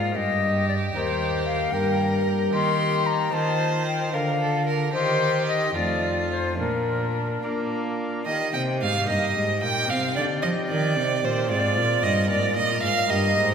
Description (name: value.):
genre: classical, baroque-style sonata movement with continuo.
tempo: 75 BPM (dotted quarters).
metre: 6/8.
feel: rubato.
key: Bb major, Eb major from 8.3 s.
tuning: A4 = 440 Hz.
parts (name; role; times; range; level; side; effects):
silver concert flute; melody; 0.0-13.5 s; Bb4 to C6; -27 LUFS; left 4 dB; none.
clear violin; second line; 0.0-13.5 s; D4 to G5; -26 LUFS; right 4 dB; none.
chamber organ, principal chorus; accompaniment; 0.0-13.5 s; Eb2 to C5; -27 LUFS; left 2 dB; none.
rich cello; bass; 0.0-13.5 s; Eb2 to Bb3; -27 LUFS; right 1 dB; none.
room: wet concert hall reverb, RT60 2.1 s.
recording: none.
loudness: -21 LUFS.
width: side -7 dB against mid.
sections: 0.0-8.3 A section; 8.3-13.5 A section.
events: none.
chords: 0.2 Eb/G; 1.7 Gm; 2.5 Eb; 3.3 F7/Eb; 4.1 Bb/D; 4.9 Cm/Eb; 5.7 F7; 6.6 Bb; 8.3 Eb; 9.1 Eb/G; 9.9 Cm; 11.5 Fm/Ab; 12.3 Bb5/Ab.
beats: | 0.15 0.94 | 1.73 2.53 | 3.33 4.13 | 4.93 5.74 | 6.58 7.42 | 8.26 9.08 | 9.89 10.70 | 11.50 12.30 | 13.10.